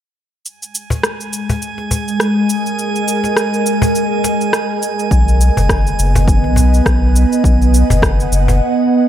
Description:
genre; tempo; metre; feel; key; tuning
organic downtempo; 103 BPM; 4/4; swing 57% on 16ths; G# minor; A4 = 440 Hz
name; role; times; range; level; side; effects
ethereal airy pad; sustained chords; 1.3-9.1 s; G#3 to F#5; -17 LUFS; right 1 dB; ensemble chorus, built-in reverb, sidechain pumping
electronic cabasa and rim click; drums; 0.5-8.6 s; none; -20 LUFS; equal; overdrive
drifting glass-harmonics texture; texture; 0.9-8.6 s; G#5; -24 LUFS; right 5 dB; chorus, built-in reverb
cajon; percussion; 0.9-8.6 s; none; -18 LUFS; left 2 dB; none
warm sub bass; bass; 5.1-8.6 s; F#1 to B1; -12 LUFS; equal; sidechain pumping
electronic kick drum; drums; 5.1-8.2 s; none; -17 LUFS; equal; overdrive
room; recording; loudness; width
light reverb; none; -12 LUFS; side -11 dB against mid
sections
0.5-9.1 A section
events
none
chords
0.5 G#sus2; 5.1 B

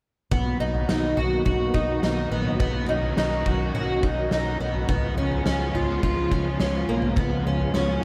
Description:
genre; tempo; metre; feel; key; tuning
dream pop; 105 BPM; 4/4; straight; B lydian; A4 = 438 Hz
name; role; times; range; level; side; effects
string machine, violas; sustained chords; 0.3-8.0 s; C#3 to F#4; -31 LUFS; equal; ensemble chorus
fingerpicked twelve-string acoustic guitar; arpeggios; 0.3-8.0 s; A#3 to F#4; -28 LUFS; equal; lush chorus, tape echo
vintage muted fingered electric bass; bass; 0.3-8.0 s; A#1 to C#2; -32 LUFS; equal; none
oversized low-tuned drum kit; drums; 0.3-7.9 s; kick drum, snare drum, toms; -30 LUFS; equal; none
room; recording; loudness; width
moderate huge ambient reverb, RT60 8.9 s; dreamy mix soaked in reverb; -24 LUFS; mono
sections
0.3-8.0 A section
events
none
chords
0.3 Bmaj7; 4.9 C#7

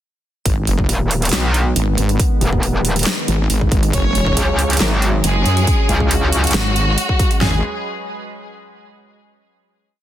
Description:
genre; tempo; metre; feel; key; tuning
heavy wobble dubstep; 138 BPM; 4/4; half-time; G# minor; A4 = 439 Hz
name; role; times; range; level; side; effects
lush unison pad; sustained chords; 0.5-7.6 s; D#3 to D#5; -25 LUFS; right 1 dB; chorus, sidechain pumping
wobble bass; bass; 0.5-7.6 s; E1 to F#2; -17 LUFS; equal; chorus, overdrive
big-room dance drum kit; drums; 0.5-7.5 s; kick drum, snare drum, toms; -18 LUFS; equal; none
big-room dance drum kit; drums; 0.5-7.4 s; hi-hat, snare drum; -21 LUFS; right 1 dB; none
metallic wobble bass; bass; 0.9-6.5 s; D#1 to C#2; -16 LUFS; equal; distortion, chorus, overdrive
clear studio violin section; melody; 3.9-7.6 s; G#3 to C#5; -22 LUFS; left 1 dB; ping-pong delay
room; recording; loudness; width
little or no reverb; dense, heavily limited modern master; -14 LUFS; side -12 dB against mid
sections
0.5-7.4 drop; 7.4-9.2 final chord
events
drop 0.5-7.4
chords
0.5 G#m; 3.9 F#sus2; 7.4 G#m

